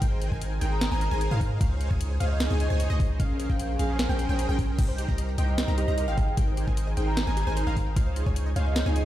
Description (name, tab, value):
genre	future bass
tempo	151 BPM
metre	4/4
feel	half-time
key	Ab major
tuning	A4 = 440 Hz
part	wide unison pluck	arpeggios	0.0-9.0 s	Eb5 to Bb5	-40 LUFS	right 1 dB	sidechain pumping, tape echo
part	soft supersaw	riff	0.0-9.0 s	Db4 to Bb5	-32 LUFS	equal	ensemble chorus, sidechain pumping, tape echo
part	long sustained 808-style bass	bass	0.0-9.0 s	Ab1 to Ab2	-26 LUFS	equal	sidechain pumping
part	electronic kick drum	drums	0.0-8.3 s	none	-26 LUFS	equal	none
part	trap drum kit	drums	0.0-9.0 s	crash cymbal, hi-hat, snare drum	-32 LUFS	equal	none
part	vibraphone with medium hard mallets	melody	0.7-9.0 s	Eb5 to Bb5	-36 LUFS	right 1 dB	sidechain pumping, dub echo
part	wide unison pluck	arpeggios	4.8-9.0 s	F4 to Bb5	-41 LUFS	left 1 dB	sidechain pumping, tape echo
room	little or no reverb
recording	played on a big sound system in a bare room, stone room reverb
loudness	-24 LUFS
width	side -13 dB against mid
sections	0.0-9.1 A section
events	none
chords	0.0 Abmaj9; 1.6 Dbmaj9; 3.2 Bbm9; 4.8 Abmaj9; 8.0 Dbmaj9